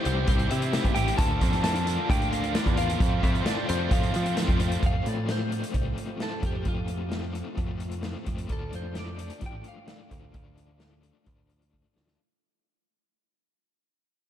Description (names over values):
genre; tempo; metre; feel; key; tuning
indie rock; 131 BPM; 4/4; straight; F major; A4 = 440 Hz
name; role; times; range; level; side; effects
clean electric guitar; melody; 0.0-11.0 s; F4 to A5; -34 LUFS; left 1 dB; wide subtle chorus
growling trumpet; second line; 0.0-4.3 s; C4 to A4; -43 LUFS; right 4 dB; none
overdriven combo organ; sustained chords; 0.0-4.8 s; Bb3 to G5; -42 LUFS; right 2 dB; none
overdriven electric guitar; riff; 0.0-12.2 s; E3 to G4; -35 LUFS; left 6 dB; tremolo
scooped high-gain guitar; riff; 0.0-4.8 s; F2 to E4; -35 LUFS; right 8 dB; distortion, lush chorus, ping-pong delay
picked electric bass; bass; 0.1-12.2 s; A1 to F3; -30 LUFS; equal; none
vintage drum kit; drums; 0.1-12.2 s; hi-hat, kick drum, snare drum; -28 LUFS; equal; none
room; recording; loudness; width
moderate cathedral reverb, RT60 5.6 s; dreamy mix soaked in reverb; -24 LUFS; side -11 dB against mid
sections
0.0-4.8 A section; 4.8-12.2 B section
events
fade-out 4.8-12.2; clean electric guitar solo 4.8-12.2; drum fill 11.7-12.2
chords
0.0 Cadd9; 1.2 Bb/D; 3.0 Fadd9; 4.8 F; 8.5 Dm